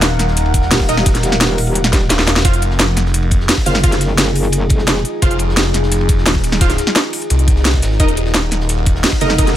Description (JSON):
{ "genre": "dark technical drum and bass", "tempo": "173 BPM", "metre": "4/4", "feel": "straight", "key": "F phrygian", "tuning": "A4 = 440 Hz", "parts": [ { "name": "deep dark ambient pad", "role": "sustained chords", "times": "0.0-9.6 s", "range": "Eb4 to Gb5", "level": "-22 LUFS", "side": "left 1 dB", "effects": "chorus, built-in reverb, sidechain pumping" }, { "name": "phased detuned saw bass", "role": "bass", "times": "0.0-9.0 s", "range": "Eb1 to C2", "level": "-16 LUFS", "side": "equal", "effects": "phaser, tube saturation" }, { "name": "crunchy breakbeat drum kit", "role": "drums", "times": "0.0-9.5 s", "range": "hi-hat, ride cymbal, snare drum", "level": "-28 LUFS", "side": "equal", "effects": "none" }, { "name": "drum and bass drum kit", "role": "drums", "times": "0.0-9.5 s", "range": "hi-hat, snare drum", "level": "-16 LUFS", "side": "equal", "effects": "none" }, { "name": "electronic kick drum", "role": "drums", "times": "0.5-9.5 s", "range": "none", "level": "-15 LUFS", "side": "equal", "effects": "none" }, { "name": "metallic wobble bass", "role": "bass", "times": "0.7-5.0, 9.2-9.6 s", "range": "Eb1 to Gb1", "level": "-17 LUFS", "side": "equal", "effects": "chorus" }, { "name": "orchestra-hit-like synth stab", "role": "stabs", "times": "0.9-9.5 s", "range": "Eb4 to F5", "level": "-21 LUFS", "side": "right 2 dB", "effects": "built-in reverb, ping-pong delay" } ], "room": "little or no reverb", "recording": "none", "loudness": "-12 LUFS", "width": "side -12 dB against mid", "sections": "0.0-9.6 A section", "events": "drum fill 1.9-2.4", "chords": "0.0 Ebm; 2.4 Fm7; 8.0 Ebm", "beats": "0.02 0.37 0.71 | 1.06 1.41 1.75 2.10 | 2.45 2.79 3.14 3.49 | 3.83 4.18 4.53 4.88 | 5.22 5.57 5.92 6.26 | 6.61 6.96 7.30 7.65 | 8.00 8.34 8.69 9.04 | 9.38" }